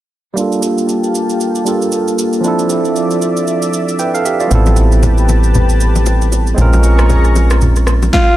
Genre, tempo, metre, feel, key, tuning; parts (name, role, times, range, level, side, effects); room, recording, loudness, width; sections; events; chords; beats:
amapiano; 116 BPM; 4/4; swing 58% on 16ths; G dorian; A4 = 439 Hz
barky tine electric piano; accompaniment; 0.3-8.2 s; F3 to G5; -16 LUFS; right 2 dB; low-pass filter, analog delay
lush unison pad; sustained chords; 0.4-8.1 s; F3 to Db6; -20 LUFS; left 2 dB; chorus, low-pass filter
deep house drum kit; drums; 0.4-8.3 s; kick drum, rim click, shaker, snare drum; -20 LUFS; equal; analog delay
plucky analog bass; bass; 4.5-8.1 s; A1 to Bb1; -10 LUFS; equal
congas and bongos; percussion; 4.5-8.1 s; -21 LUFS; left 2 dB
breathy alto saxophone; melody; 8.1-8.4 s; F4; -11 LUFS; equal
light reverb; echo-heavy mix, lossy compression artefacts; -10 LUFS; side -14 dB against mid
0.4-8.4 A section
filter sweep 0.4-8.4
0.4 Gm9; 2.4 Dm9; 4.5 Am9; 6.6 Bbm9
| 0.37 0.89 1.41 1.92 | 2.44 2.96 3.48 3.99 | 4.51 5.03 5.54 6.06 | 6.58 7.10 7.61 8.13